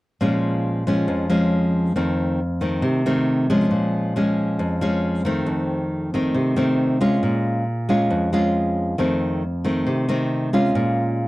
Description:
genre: bossa nova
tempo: 137 BPM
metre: 4/4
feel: straight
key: Bb minor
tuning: A4 = 440 Hz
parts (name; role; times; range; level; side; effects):
- nylon-string guitar; accompaniment; 0.2-11.3 s; F2 to F4; -19 LUFS; equal; none
room: light reverb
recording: dry, close 1970s-style studio recording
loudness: -19 LUFS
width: side -18 dB against mid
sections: 0.2-11.3 A section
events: none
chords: 0.2 Bbm7; 2.0 F7; 3.7 Bbm7; 5.5 F7; 7.2 Bbm7; 9.0 F7; 10.7 Bbm7

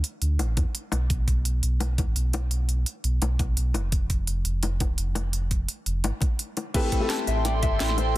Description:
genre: liquid drum and bass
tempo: 170 BPM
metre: 4/4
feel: straight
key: A minor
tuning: A4 = 440 Hz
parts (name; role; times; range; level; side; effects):
- sub bass with octave; bass; 0.0-8.2 s; Eb1 to F2; -25 LUFS; equal; none
- drum and bass drum kit; drums; 0.0-8.1 s; crash cymbal, hi-hat, snare drum; -31 LUFS; right 1 dB; none
- bongos; percussion; 0.4-8.1 s; none; -35 LUFS; left 5 dB; none
- electronic kick drum; drums; 0.6-7.7 s; none; -25 LUFS; equal; none
- felt-muted upright piano; accompaniment; 6.7-8.2 s; A3 to B4; -29 LUFS; left 2 dB; dub echo
- airy breathy pad; sustained chords; 7.1-8.2 s; A4 to C6; -30 LUFS; right 3 dB; chorus, sidechain pumping
- concert harp; arpeggios; 6.7-8.2 s; E4 to A5; -31 LUFS; left 7 dB; dub echo
room: little or no reverb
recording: dense, heavily limited modern master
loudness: -23 LUFS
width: side -16 dB against mid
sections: 0.0-8.2 A section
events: none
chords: 0.0 Dm; 0.9 N.C.; 6.7 Am7

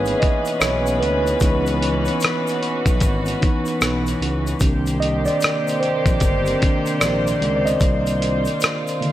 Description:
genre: lo-fi hip hop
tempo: 75 BPM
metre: 4/4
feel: swing 64% on 16ths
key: unclear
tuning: A4 = 436 Hz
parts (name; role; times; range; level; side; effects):
- mellow tine electric piano; accompaniment; 0.0-9.1 s; D3 to F#5; -21 LUFS; right 1 dB; fast stereo tremolo, cassette tape, low-pass filter
- warm studio string section; sustained chords; 0.0-9.1 s; C3 to C5; -25 LUFS; left 2 dB; low-pass filter
- smooth gliding synth bass; bass; 0.0-8.5 s; G1 to D2; -24 LUFS; left 1 dB; none
- dusty soul sampler-style drum kit; drums; 0.1-9.1 s; hi-hat, kick drum, rim click; -21 LUFS; equal; none
- egg shaker; percussion; 0.1-9.0 s; none; -37 LUFS; left 7 dB; none
room: light reverb, digital ambience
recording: none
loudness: -17 LUFS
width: side -13 dB against mid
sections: 0.0-9.1 A section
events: tine electric piano solo 0.0-9.1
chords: 0.0 C#m7; 4.6 Cm7

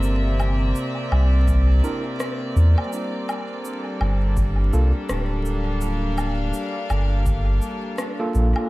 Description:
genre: ambient dub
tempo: 83 BPM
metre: 4/4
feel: swing 59% on 16ths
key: G dorian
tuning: A4 = 436 Hz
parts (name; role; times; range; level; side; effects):
- rich chamber string section; sustained chords; 0.0-8.7 s; C3 to F5; -27 LUFS; equal; none
- warm sub bass; bass; 0.0-8.5 s; D1 to E2; -19 LUFS; equal; none
- electronic cabasa, woodblock and rim click; drums; 0.0-8.7 s; none; -32 LUFS; left 1 dB; dub echo
- electronic kick drum; drums; 1.5-7.4 s; none; -26 LUFS; equal; none
- overdriven tine electric piano; stabs; 1.8-8.7 s; Bb3 to Bb4; -31 LUFS; right 2 dB; fast tremolo, dub echo
room: light reverb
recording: vinyl crackle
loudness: -19 LUFS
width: side -20 dB against mid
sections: 0.0-8.7 A section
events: none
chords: 0.0 C9; 2.9 Gm9

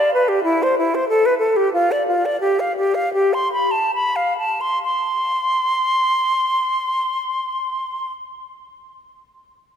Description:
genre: classical, baroque-style fantasia for unaccompanied flute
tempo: 63-99 BPM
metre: 3/4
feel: rubato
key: unclear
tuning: A4 = 441 Hz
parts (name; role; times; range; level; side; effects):
- silver concert flute; solo; 0.0-8.1 s; E4 to C6; -17 LUFS; equal; none
room: wet cathedral reverb, RT60 3.8 s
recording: none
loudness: -17 LUFS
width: side -8 dB against mid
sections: 0.0-4.8 A section; 4.8-9.8 B section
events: slowing down 0.0-4.8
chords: none

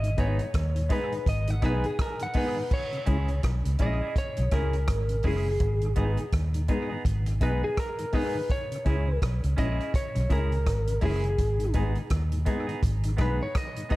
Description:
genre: roots reggae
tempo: 83 BPM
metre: 4/4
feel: swing 59% on 16ths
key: G# minor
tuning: A4 = 439 Hz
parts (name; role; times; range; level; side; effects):
- lightly driven lead guitar; melody; 0.0-14.0 s; G#4 to G#5; -32 LUFS; equal; dub echo
- mellow tonewheel organ; accompaniment; 0.0-14.0 s; G#2 to E4; -37 LUFS; left 2 dB; slow rotary speaker
- vintage muted fingered electric bass; bass; 0.0-13.4 s; F#1 to D#2; -26 LUFS; equal; none
- vintage drum kit; drums; 0.0-14.0 s; crash cymbal, hi-hat, kick drum, rim click; -30 LUFS; equal; none
- clean electric guitar; accompaniment; 0.2-14.0 s; B3 to G#4; -37 LUFS; right 4 dB; dub echo
- warm upright piano; stabs; 0.2-14.0 s; G#3 to G#4; -37 LUFS; left 4 dB; none
room: little or no reverb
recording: echo-heavy mix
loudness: -24 LUFS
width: side -18 dB against mid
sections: 0.0-2.7 A section; 2.7-14.0 B section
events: lead electric guitar solo 0.0-2.7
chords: 0.0 G#m; 2.7 C#m; 5.6 G#m; 8.5 C#m; 11.4 G#m

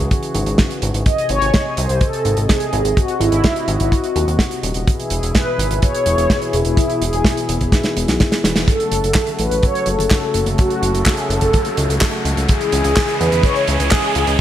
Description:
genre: italo disco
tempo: 126 BPM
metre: 4/4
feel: straight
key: unclear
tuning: A4 = 440 Hz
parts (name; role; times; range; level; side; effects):
- warm analog pad; sustained chords; 0.0-14.4 s; B2 to G#5; -24 LUFS; left 1 dB; chorus
- fat analog bass; bass; 0.0-14.4 s; D#1 to E2; -20 LUFS; equal; tube saturation
- kick drum; drums; 0.0-14.0 s; none; -16 LUFS; equal; none
- damped 70s drum kit; drums; 0.1-14.4 s; handclaps, hi-hat, snare drum, toms; -21 LUFS; right 1 dB; high-pass filter on hats, high-pass filter on toms, high-pass filter on snare, high-pass filter on room
- mellow synth brass; melody; 1.1-14.4 s; E4 to D#5; -20 LUFS; equal; chorus, digital delay
- riser; sound effects; 10.4-14.4 s; none; -26 LUFS; right 1 dB; none
room: moderate lush hall reverb, RT60 1.9 s, small room ambience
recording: bright 1980s-style digital production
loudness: -14 LUFS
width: side -11 dB against mid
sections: 0.0-8.7 A section; 8.7-14.4 B section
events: drum fill 7.7-8.7; band accent 8.6; riser 10.4-14.4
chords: 0.0 C#m; 1.1 G#; 4.9 E; 8.7 F#m; 12.5 C#m

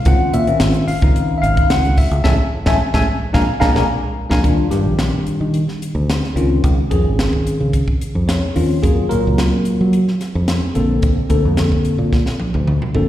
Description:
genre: electric jazz fusion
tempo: 109 BPM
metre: 4/4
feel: straight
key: Eb lydian from 4.4 s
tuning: A4 = 440 Hz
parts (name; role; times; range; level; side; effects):
- tine electric piano; accompaniment; 0.0-13.1 s; D3 to A#5; -18 LUFS; left 1 dB; phaser, slapback echo
- fingered electric bass; bass; 0.1-13.1 s; G#1 to Gb3; -18 LUFS; equal; none
- crisp fusion drum kit; drums; 0.1-13.1 s; hi-hat, kick drum, snare drum, toms; -18 LUFS; equal; none
room: light reverb, small room ambience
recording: live gig heard through the venue's PA, recital hall reverb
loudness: -14 LUFS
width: side -12 dB against mid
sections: 0.0-4.4 A section; 4.4-13.1 B section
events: band accent 2.3-4.4; tine electric piano fill 3.4-4.4, 8.0-8.8; drum fill 3.9-4.4, 12.1-13.1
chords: 0.1 C#maj9; 2.3 Amaj7; 3.4 A#7; 4.4 Ebmaj7; 6.4 Dbmaj9; 8.8 Gbmaj7; 10.8 Bbmaj9

